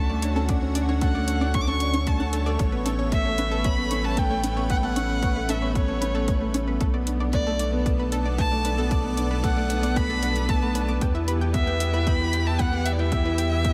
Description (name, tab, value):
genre	piano and strings electronica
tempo	114 BPM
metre	4/4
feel	straight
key	B minor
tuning	A4 = 440 Hz
part	dark violin	melody	0.0-13.7 s	C#5 to D6	-32 LUFS	equal	none
part	lush unison pad	sustained chords	0.0-13.7 s	A2 to E5	-36 LUFS	equal	chorus
part	felt-muted upright piano	riff	0.0-13.7 s	A3 to D5	-30 LUFS	equal	none
part	round analog bass	bass	0.0-13.7 s	A1 to E2	-29 LUFS	equal	sidechain pumping
part	analog pluck	arpeggios	0.1-13.7 s	A4 to D6	-39 LUFS	equal	chorus, sidechain pumping, digital delay
part	electronic hi-hat	drums	0.2-13.7 s	none	-37 LUFS	equal	overdrive
part	electronic kick drum	drums	0.5-13.7 s	none	-28 LUFS	equal	overdrive
room	light reverb, digital ambience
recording	none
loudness	-24 LUFS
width	mono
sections	0.0-13.7 A section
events	none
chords	0.0 Dmaj7; 2.6 Aadd9; 6.8 Bm7; 11.0 Em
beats	| 0.49 1.01 1.54 2.07 | 2.59 3.12 3.65 4.17 | 4.70 5.22 5.75 6.28 | 6.80 7.33 7.86 8.38 | 8.91 9.43 9.96 10.49 | 11.01 11.54 12.07 12.59 | 13.12 13.64